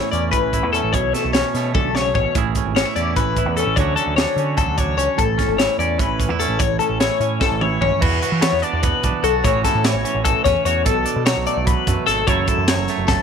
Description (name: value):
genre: math rock and midwest emo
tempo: 296 BPM (eighths)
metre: 7/8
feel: straight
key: A major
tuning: A4 = 440 Hz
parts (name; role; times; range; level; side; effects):
- twangy electric guitar; accompaniment; 0.0-13.2 s; F#2 to A4; -23 LUFS; right 14 dB; none
- twelve-string electric guitar; arpeggios; 0.0-13.2 s; A4 to D5; -20 LUFS; left 10 dB; phaser
- growling picked electric bass; bass; 0.1-13.2 s; F#1 to E3; -24 LUFS; right 1 dB; overdrive
- crisp fusion drum kit; drums; 0.1-13.2 s; crash cymbal, hi-hat, kick drum, snare drum, toms; -22 LUFS; right 1 dB; none
room: small room ambience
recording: 1960s-style stereo with parts hard left and right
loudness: -16 LUFS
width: side -7 dB against mid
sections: 0.0-8.0 A section; 8.0-13.2 B section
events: drum fill 1.7-2.4, 7.4-8.0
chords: 0.0 A; 2.4 Amaj7; 3.8 Dmaj7; 5.2 Amaj7; 6.6 A; 8.0 Esus2; 9.4 A6; 10.9 Bm7; 12.3 F#m7